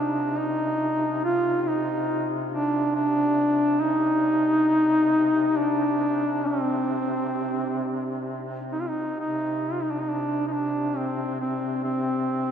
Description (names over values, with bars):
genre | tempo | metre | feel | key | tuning
caucasian folk, Caucasian lament | 68 BPM | 3/4 | rubato | C minor | A4 = 440 Hz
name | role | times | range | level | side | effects
mellow duduk | melody | 0.0-12.5 s | C4 to F4 | -23 LUFS | equal | none
warm duduk | drone | 0.0-12.5 s | C3 | -33 LUFS | equal | stereo widening
room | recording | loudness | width
wet cathedral reverb, RT60 6.5 s | in a vast, echoing space | -22 LUFS | side -8 dB against mid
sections
0.0-9.2 A section; 9.2-12.5 B section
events
none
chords
none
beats
0.38 | 1.24 2.10 2.96 | 3.82 4.70 5.59 | 6.48 7.38 8.29 | 9.20 10.10 10.98 | 11.86